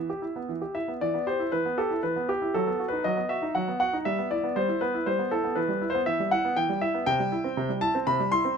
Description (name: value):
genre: classical-period piano sonatina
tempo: 119 BPM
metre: 3/4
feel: rubato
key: E minor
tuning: A4 = 440 Hz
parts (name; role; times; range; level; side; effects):
- clear grand piano; solo; 0.0-8.6 s; C3 to C6; -25 LUFS; equal; none
room: light reverb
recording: close, detailed microphones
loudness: -25 LUFS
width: side -6 dB against mid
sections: 0.0-1.0 A section; 1.0-8.6 B section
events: none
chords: 0.0 Em; 2.5 B/F#; 4.1 Em/G; 5.6 Em; 7.1 C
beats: 0.49 | 1.02 1.53 2.04 | 2.54 3.05 3.55 | 4.06 4.57 5.07 | 5.57 6.07 6.57 | 7.07 7.57 8.07 | 8.57